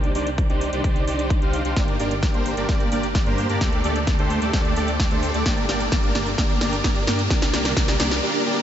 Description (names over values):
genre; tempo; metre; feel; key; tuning
EDM, festival progressive house; 130 BPM; 4/4; straight; G minor; A4 = 440 Hz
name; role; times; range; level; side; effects
dense compressed supersaw; riff; 0.0-8.6 s; A3 to F5; -23 LUFS; right 1 dB; sidechain pumping, low-pass filter, diffuse ambient delay
detuned saw bass; bass; 0.0-8.2 s; G1 to G2; -28 LUFS; equal; sidechain pumping
big-room dance drum kit; drums; 0.0-8.2 s; hi-hat, snare drum; -26 LUFS; equal; none
electronic kick drum; drums; 0.4-7.9 s; none; -22 LUFS; equal; none
room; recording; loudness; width
wet huge ambient reverb, RT60 7.9 s; dreamy mix soaked in reverb, nothing above 7.9 kHz; -19 LUFS; side -10 dB against mid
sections
0.0-8.6 A section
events
build-up 0.0-8.6; drum fill 1.8-8.2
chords
0.0 Cmadd9; 1.8 Gm; 3.6 Dsus4; 5.5 Gm; 7.3 Csus2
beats
0.38 0.84 1.30 | 1.77 2.23 2.69 3.15 | 3.61 4.07 4.54 5.00 | 5.46 5.92 6.38 6.84 | 7.30 7.77 8.23